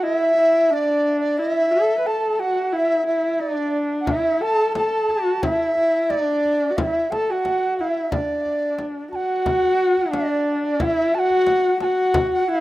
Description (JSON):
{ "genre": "mongolian traditional, Mongolian folk", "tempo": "89 BPM", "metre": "4/4", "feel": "straight", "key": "D gong mode", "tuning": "A4 = 440 Hz", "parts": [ { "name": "warm horsehead fiddle", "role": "melody", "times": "0.0-12.6 s", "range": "D4 to B4", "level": "-21 LUFS", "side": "left 1 dB", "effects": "none" }, { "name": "reedy large dizi", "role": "second line", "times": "0.0-12.6 s", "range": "D5 to A5", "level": "-21 LUFS", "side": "right 1 dB", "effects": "none" }, { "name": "frame drum", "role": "percussion", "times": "4.1-12.4 s", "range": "none", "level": "-27 LUFS", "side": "left 2 dB", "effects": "none" } ], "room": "moderate plate reverb, RT60 3.3 s", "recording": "rough home demo mix", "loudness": "-18 LUFS", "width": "side -16 dB against mid", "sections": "0.0-9.5 A section; 9.5-12.6 B section", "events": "none", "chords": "none", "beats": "0.03 0.70 | 1.38 2.05 2.73 3.40 | 4.07 4.75 5.42 6.09 | 6.76 7.44 8.11 8.78 | 9.45 10.12 10.80 11.47 | 12.14" }